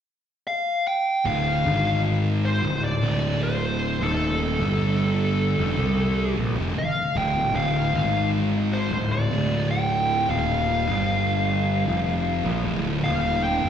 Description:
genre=metal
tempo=76 BPM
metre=4/4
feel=straight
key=D minor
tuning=A4 = 437 Hz
part: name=fuzz lead guitar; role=melody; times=0.5-13.7 s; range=A4 to G5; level=-25 LUFS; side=left 1 dB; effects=wah, distortion, slapback echo, ping-pong delay
part: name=bowed-like drone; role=sustained chords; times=2.0-13.7 s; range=D3 to E5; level=-38 LUFS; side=left 1 dB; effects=none
part: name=thick fuzz guitar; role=riff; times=1.2-13.7 s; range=D2 to C4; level=-27 LUFS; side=right 7 dB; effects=distortion
part: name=thick fuzz guitar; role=riff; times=1.3-13.7 s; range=D2 to C4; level=-29 LUFS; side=left 9 dB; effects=distortion
part: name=fuzz picked electric bass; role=bass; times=1.3-13.7 s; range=D1 to C2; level=-26 LUFS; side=left 1 dB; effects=overdrive
room=little or no reverb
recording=live gig heard through the venue's PA, recital hall reverb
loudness=-21 LUFS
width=side -8 dB against mid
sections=0.0-1.3 A section; 1.3-13.7 B section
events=none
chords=0.0 N.C.; 1.3 Dm; 1.6 G#5; 2.6 D5; 4.6 G5; 5.6 Dm; 7.9 G#5; 8.9 Dm; 10.9 G5; 11.9 Dm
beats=0.47 | 1.25 2.04 2.83 3.62 | 4.40 5.19 5.97 6.76 | 7.55 8.33 9.12 9.90 | 10.69 11.47 12.26 13.04

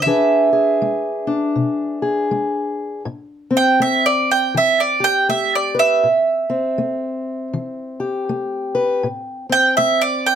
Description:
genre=acoustic country blues, solo or duo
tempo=80 BPM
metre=4/4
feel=swing 60% on 8ths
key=A minor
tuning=A4 = 439 Hz
part: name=mandolin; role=melody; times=0.0-10.4 s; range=D5 to G5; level=-16 LUFS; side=right 3 dB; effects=none
part: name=fingerpicked steel-string acoustic guitar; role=accompaniment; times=0.0-10.4 s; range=A2 to B4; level=-21 LUFS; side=left 3 dB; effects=none
room=light reverb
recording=close, detailed microphones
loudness=-16 LUFS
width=side -9 dB against mid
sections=0.0-3.1 A section; 3.1-10.4 B section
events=mandolin solo 3.1-10.4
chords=0.1 E7; 3.1 Am7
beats=| 0.06 0.81 1.56 2.31 | 3.05 3.80 4.55 5.30 | 6.04 6.79 7.54 8.29 | 9.03 9.78

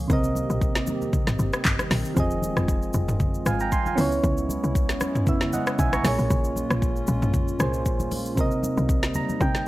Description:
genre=amapiano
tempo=116 BPM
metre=4/4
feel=swing 55% on 16ths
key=unclear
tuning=A4 = 440 Hz
part: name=soft electric-piano-like synth keys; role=accompaniment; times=0.0-9.7 s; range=Bb2 to Db6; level=-27 LUFS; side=right 2 dB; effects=chorus
part: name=hollow soft pad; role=sustained chords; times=0.0-9.7 s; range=C3 to G4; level=-32 LUFS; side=left 1 dB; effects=chorus, sidechain pumping
part: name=woody log drum bass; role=bass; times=0.0-9.5 s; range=F1 to C3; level=-27 LUFS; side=equal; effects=none
part: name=deep house drum kit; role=drums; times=0.1-9.7 s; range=handclaps, hi-hat, kick drum, rim click, shaker, snare drum, toms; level=-25 LUFS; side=equal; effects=none
part: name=congas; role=percussion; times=0.1-9.5 s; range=none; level=-33 LUFS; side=left 1 dB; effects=none
room=digital ambience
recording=dry, gritty hardware recording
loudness=-21 LUFS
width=side -17 dB against mid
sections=0.0-9.7 A section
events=synth keys fill 8.9-9.7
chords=0.1 Cm7; 2.2 Fm7; 4.0 Dbm7; 6.0 Bbm7; 8.4 Cm7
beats=| 0.10 0.61 1.13 1.65 | 2.17 2.68 3.20 3.72 | 4.24 4.75 5.27 5.79 | 6.30 6.82 7.34 7.86 | 8.37 8.89 9.41

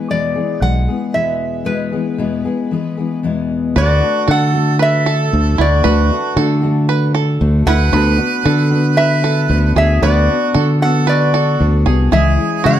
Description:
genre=acoustic folk duo or small band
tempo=115 BPM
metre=4/4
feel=straight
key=unclear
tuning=A4 = 440 Hz
part: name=lap resonator guitar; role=melody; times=0.0-12.8 s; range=B4 to F#5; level=-19 LUFS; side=equal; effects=plate reverb
part: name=picked steel-string acoustic guitar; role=accompaniment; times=0.0-12.8 s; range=E2 to G#4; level=-19 LUFS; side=left 4 dB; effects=none
part: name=fingered electric bass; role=bass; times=0.6-12.8 s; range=B1 to D3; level=-14 LUFS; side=equal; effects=none
part: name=warm harmonica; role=second line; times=3.8-12.8 s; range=F#4 to C#5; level=-21 LUFS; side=right 6 dB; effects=none
part: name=bluegrass banjo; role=arpeggios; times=3.8-12.8 s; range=E4 to B4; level=-22 LUFS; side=right 8 dB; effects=none
room=light reverb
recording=none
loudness=-12 LUFS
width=side -11 dB against mid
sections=0.0-3.8 A section; 3.8-12.8 B section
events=none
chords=0.0 E; 3.8 D; 7.9 Bm/D; 12.1 C#m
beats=0.10 0.62 1.14 | 1.67 2.19 2.71 3.23 | 3.75 4.28 4.80 5.32 | 5.84 6.37 6.89 7.41 | 7.93 8.46 8.98 9.50 | 10.03 10.55 11.07 11.59 | 12.12 12.64

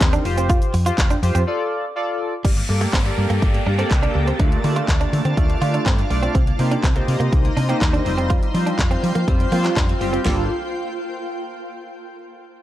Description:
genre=dance-pop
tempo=123 BPM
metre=4/4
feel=straight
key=G minor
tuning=A4 = 439 Hz
part: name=chorused polysynth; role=accompaniment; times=0.0-10.5 s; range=G3 to D5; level=-25 LUFS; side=left 1 dB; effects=sidechain pumping
part: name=woody fretless electric bass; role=bass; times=0.0-10.5 s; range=F1 to F3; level=-21 LUFS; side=equal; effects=sidechain pumping
part: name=pop drum kit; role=drums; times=0.0-10.4 s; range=crash cymbal, handclaps, hi-hat, kick drum, shaker, snare drum, toms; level=-20 LUFS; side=equal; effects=none
part: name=direct-recorded clean electric guitar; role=riff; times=0.1-10.4 s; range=G3 to F4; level=-26 LUFS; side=right 5 dB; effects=analog chorus
part: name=shimmering ambient pad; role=sustained chords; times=3.1-10.5 s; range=Bb3 to Bb5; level=-27 LUFS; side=equal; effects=chorus, built-in reverb, sidechain pumping
part: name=glassy wavetable pluck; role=arpeggios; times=2.4-10.5 s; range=G3 to A4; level=-33 LUFS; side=equal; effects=chorus, phaser, sidechain pumping, analog delay
part: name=downlifter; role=sound effects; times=2.4-6.3 s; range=none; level=-33 LUFS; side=equal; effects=none
room=digital ambience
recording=dry, gritty hardware recording, cassette tape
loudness=-17 LUFS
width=side -13 dB against mid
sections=0.0-2.4 A section; 2.4-10.3 B section; 10.3-12.2 C section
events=drop 0.0-2.4; break 1.5-2.4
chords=0.3 Fsus2; 1.5 Dm; 2.4 Gmadd9; 4.4 Dm; 6.3 Cm7; 8.1 Fsus2; 10.3 Gmadd9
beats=0.01 | 0.50 0.98 1.47 1.96 | 2.45 2.94 3.42 3.91 | 4.40 4.89 5.37 5.86 | 6.35 6.84 7.33 7.81 | 8.30 8.79 9.28 9.77 | 10.25

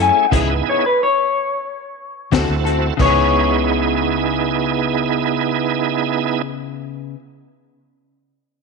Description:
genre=straight-eighth soul blues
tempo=90 BPM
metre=4/4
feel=straight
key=C# minor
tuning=A4 = 440 Hz
part: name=electric guitar through a small old amp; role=melody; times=0.0-7.1 s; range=B4 to G#5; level=-18 LUFS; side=left 5 dB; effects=slapback echo
part: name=bright tonewheel organ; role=accompaniment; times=0.0-6.4 s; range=A3 to A4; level=-19 LUFS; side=right 12 dB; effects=slow rotary speaker, overdrive, chorus vibrato
part: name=direct-recorded clean electric guitar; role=stabs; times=0.0-7.2 s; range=C#3 to A4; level=-23 LUFS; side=left 11 dB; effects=none
part: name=vintage muted fingered electric bass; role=bass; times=0.0-7.1 s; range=C#2 to D2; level=-22 LUFS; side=right 1 dB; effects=none
part: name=crunchy breakbeat drum kit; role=drums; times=0.3-3.1 s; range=crash cymbal, hi-hat, kick drum, snare drum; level=-23 LUFS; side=left 3 dB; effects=none
room=moderate echo chamber reverb, RT60 2.0 s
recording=1960s-style stereo with parts hard left and right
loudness=-15 LUFS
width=side -4 dB against mid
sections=0.0-3.0 A section; 3.0-5.7 B section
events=stop 0.3-2.3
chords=0.3 C#m7; 2.3 D7; 3.0 C#m7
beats=| 0.32 0.98 1.65 2.32 | 2.99 3.65 4.32 4.99

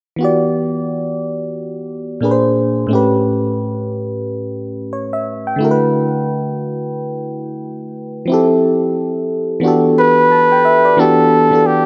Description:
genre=R&B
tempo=89 BPM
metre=4/4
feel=swing 61% on 16ths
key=E dorian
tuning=A4 = 436 Hz
part: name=FM electric piano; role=accompaniment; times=0.2-11.9 s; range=A2 to A5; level=-17 LUFS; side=equal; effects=chorus
part: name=warm flugelhorn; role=melody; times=10.0-11.9 s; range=G4 to B4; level=-12 LUFS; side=equal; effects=none
room=moderate plate reverb, RT60 2.5 s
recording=none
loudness=-15 LUFS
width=mono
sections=0.2-11.0 A section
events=none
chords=0.2 Em7; 2.2 A#9; 2.9 A9; 5.6 D69; 8.3 Fmaj9; 9.6 Em11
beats=| 0.19 0.87 1.54 2.22 | 2.89 3.56 4.24 4.91 | 5.59 6.26 6.93 7.61 | 8.28 8.96 9.63 10.31 | 10.98 11.65

